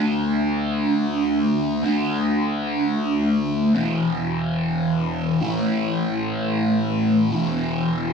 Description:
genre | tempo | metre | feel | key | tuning
rock | free time | none | none | unclear | A4 = 439 Hz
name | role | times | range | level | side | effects
fuzz guitar | solo | 0.0-8.1 s | E2 to D4 | -19 LUFS | equal | distortion, phaser
room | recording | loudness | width
wet large studio reverb, RT60 0.9 s | band playing live in one room | -19 LUFS | side -6 dB against mid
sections
0.0-3.8 A section; 3.8-8.1 B section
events
none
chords
0.0 D5; 3.8 E5; 5.4 A5; 7.3 E5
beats
free time

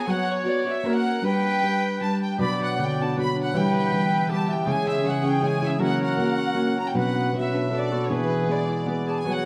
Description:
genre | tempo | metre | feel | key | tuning
mexican folk, mariachi | 157 BPM | 3/4 | straight | B minor | A4 = 440 Hz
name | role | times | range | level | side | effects
rich chamber violin section | melody | 0.0-9.5 s | B4 to B5 | -30 LUFS | equal | none
mellow trumpet | second line | 0.0-9.5 s | F#4 to D5 | -32 LUFS | equal | slapback echo
nylon-string guitar | accompaniment | 0.0-9.5 s | B2 to C#5 | -28 LUFS | equal | none
concert harp | arpeggios | 2.4-9.5 s | B2 to F#5 | -29 LUFS | equal | none
room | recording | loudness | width
moderate concert hall reverb, RT60 2.0 s | close, detailed microphones | -24 LUFS | mono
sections
0.0-9.5 A section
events
none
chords
0.1 F#sus4; 0.9 F#; 1.2 G; 2.4 Bm; 3.5 Em; 4.7 C#m; 5.8 F#; 7.0 Bm; 8.1 E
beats
| 0.09 0.47 0.86 | 1.24 1.62 2.01 | 2.40 2.78 3.16 | 3.54 3.91 4.28 | 4.66 5.04 5.42 | 5.80 6.18 6.57 | 6.95 7.34 7.72 | 8.11 8.49 8.87 | 9.25

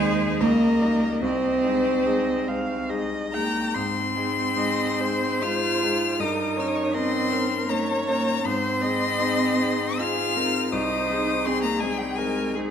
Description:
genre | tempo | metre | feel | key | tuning
classical, slow romantic movement for piano quartet | 66-85 BPM | 3/4 | rubato | Ab major | A4 = 436 Hz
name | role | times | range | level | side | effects
rich violin | melody | 0.0-12.5 s | Ab4 to F6 | -27 LUFS | left 6 dB | none
warm cello | second line | 0.0-12.5 s | G3 to F4 | -26 LUFS | right 4 dB | none
clear grand piano | accompaniment | 0.0-12.7 s | C2 to C5 | -28 LUFS | left 4 dB | none
rich viola | accompaniment | 0.0-12.7 s | Ab4 to G5 | -30 LUFS | right 2 dB | none
room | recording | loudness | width
wet recital hall reverb, RT60 1.6 s | none | -21 LUFS | side -8 dB against mid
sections
0.0-3.8 A section; 3.8-12.7 A section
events
none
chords
0.4 Eb7/Db; 1.2 Ab/C; 3.8 Ab; 6.2 Eb7/G; 8.4 Ab; 10.7 Ab/C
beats
0.41 | 1.23 2.06 2.90 | 3.75 4.57 5.43 | 6.19 6.93 7.69 | 8.44 9.18 9.99 | 10.72 11.45 12.16

